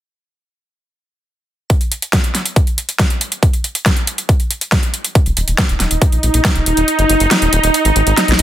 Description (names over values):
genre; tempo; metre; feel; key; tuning
psychedelic trance; 139 BPM; 4/4; straight; Eb minor; A4 = 440 Hz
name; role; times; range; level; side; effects
big-room dance drum kit; drums; 1.7-8.4 s; hi-hat, snare drum; -17 LUFS; equal; overdrive
electronic kick drum; drums; 1.7-6.5 s; none; -14 LUFS; equal; overdrive
swarming drone; sustained chords; 5.9-8.4 s; Eb4; -16 LUFS; right 1 dB; built-in reverb, sidechain pumping
round analog bass; bass; 5.3-8.4 s; Eb1 to Bb1; -16 LUFS; equal; none
room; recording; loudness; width
light reverb; dense, heavily limited modern master; -12 LUFS; side -12 dB against mid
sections
1.7-8.4 A section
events
kick drops out 6.9-8.4; drum fill 8.2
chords
1.7 Eb5